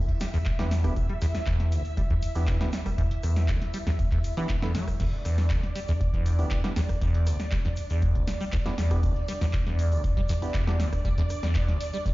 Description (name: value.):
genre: acid house.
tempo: 119 BPM.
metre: 4/4.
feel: straight.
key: E minor.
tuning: A4 = 440 Hz.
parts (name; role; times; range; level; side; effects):
string machine, full ensemble; sustained chords; 0.0-12.1 s; D5 to E5; -38 LUFS; right 1 dB; ensemble chorus, sidechain pumping.
liquid acid bass; riff; 0.0-12.1 s; D2 to G3; -27 LUFS; equal; analog chorus, tape echo.
electronic kick drum; drums; 0.1-12.1 s; none; -28 LUFS; equal; none.
punchy analog drum machine; drums; 0.1-12.1 s; crash cymbal, handclaps, hi-hat, rim click, snare drum; -36 LUFS; equal; none.
egg shaker; percussion; 0.2-12.1 s; none; -50 LUFS; left 2 dB; none.
percussive organ stab; stabs; 0.6-10.8 s; B3 to A4; -38 LUFS; right 3 dB; lush chorus, tape echo.
room: digital ambience.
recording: played on a big sound system in a bare room, large studio reverb, nothing above 7.5 kHz.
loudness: -24 LUFS.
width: side -19 dB against mid.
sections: 0.0-12.1 A section.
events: none.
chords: 0.0 Em7.